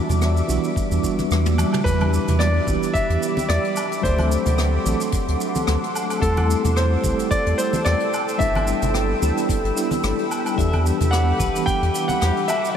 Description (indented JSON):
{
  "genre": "sunset chillout",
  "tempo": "110 BPM",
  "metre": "4/4",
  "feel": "swing 55% on 16ths",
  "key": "unclear",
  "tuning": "A4 = 437 Hz",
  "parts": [
    { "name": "tine electric piano", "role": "accompaniment", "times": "0.0-12.8 s", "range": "E3 to A4", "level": "-25 LUFS", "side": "moving between left 4 dB and right 5 dB", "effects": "slow stereo tremolo, auto-pan, diffuse ambient delay" },
    { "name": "shimmering ambient pad", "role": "sustained chords", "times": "0.0-12.8 s", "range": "G3 to E6", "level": "-27 LUFS", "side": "equal", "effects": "chorus, built-in reverb" },
    { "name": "warm sub bass", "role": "bass", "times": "0.1-12.3 s", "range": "G1 to E2", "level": "-21 LUFS", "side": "equal", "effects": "none" },
    { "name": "jazz brush drum kit", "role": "drums", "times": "0.1-12.7 s", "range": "hi-hat, rim click, shaker, toms, woodblock", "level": "-29 LUFS", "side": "equal", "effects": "none" },
    { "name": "congas", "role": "percussion", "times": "0.1-12.2 s", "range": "none", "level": "-32 LUFS", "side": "right 1 dB", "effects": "none" },
    { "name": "electronic kick drum", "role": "drums", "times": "0.8-11.8 s", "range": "none", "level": "-25 LUFS", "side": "equal", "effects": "none" },
    { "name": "bright concert grand piano", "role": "melody", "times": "1.8-12.8 s", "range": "A4 to G5", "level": "-25 LUFS", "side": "equal", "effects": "analog delay" },
    { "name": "electric guitar at the edge of break-up", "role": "arpeggios", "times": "10.6-12.7 s", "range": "F#4 to E5", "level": "-31 LUFS", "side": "left 2 dB", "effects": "analog chorus, diffuse ambient delay" }
  ],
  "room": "moderate huge ambient reverb, RT60 7.5 s",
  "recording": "dreamy mix soaked in reverb",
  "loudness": "-18 LUFS",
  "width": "side -8 dB against mid",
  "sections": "0.0-1.9 A section; 1.9-12.8 B section",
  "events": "drum fill 1.4-1.9",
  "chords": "0.0 Em9; 1.9 Em7; 3.8 D7; 6.2 C6; 8.1 G69; 10.6 Em7",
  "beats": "0.22 0.76 1.31 | 1.85 2.40 2.94 3.49 | 4.04 4.58 5.13 5.67 | 6.22 6.76 7.31 7.86 | 8.40 8.95 9.49 10.04 | 10.58 11.13 11.67 12.22 | 12.76"
}